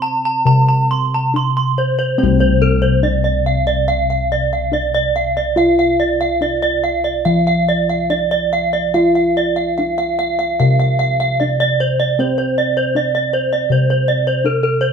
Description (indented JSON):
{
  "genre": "Javanese gamelan",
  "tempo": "72 BPM",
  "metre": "4/4",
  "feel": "uneven beats",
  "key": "unclear",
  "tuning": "A4 = 440 Hz",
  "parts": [
    { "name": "gamelan-type bronze metallophone", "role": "arpeggios", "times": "0.0-14.9 s", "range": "Bb4-45c to C6", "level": "-16 LUFS", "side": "right 2 dB", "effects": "none" },
    { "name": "gamelan-type bossed gongs", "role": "bass", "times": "0.0-14.9 s", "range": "C2 to F4-35c", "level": "-17 LUFS", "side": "left 1 dB", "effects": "none" }
  ],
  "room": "wet studio reverb, RT60 0.8 s",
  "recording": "band playing live in one room",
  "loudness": "-14 LUFS",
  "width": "side -6 dB against mid",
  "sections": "0.0-2.2 A section; 2.2-14.9 B section",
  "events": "none",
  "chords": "none"
}